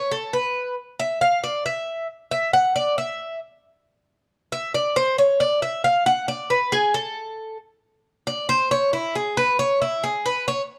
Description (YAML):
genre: latin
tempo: 136 BPM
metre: 4/4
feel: straight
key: unclear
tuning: A4 = 440 Hz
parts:
  - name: Cuban tres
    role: solo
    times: 0.0-10.6 s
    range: E4 to F#5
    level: -22 LUFS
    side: equal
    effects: none
room: light reverb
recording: dark, warm production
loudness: -22 LUFS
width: mono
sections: 0.0-10.8 A section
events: Cuban tres solo 0.0-10.8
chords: none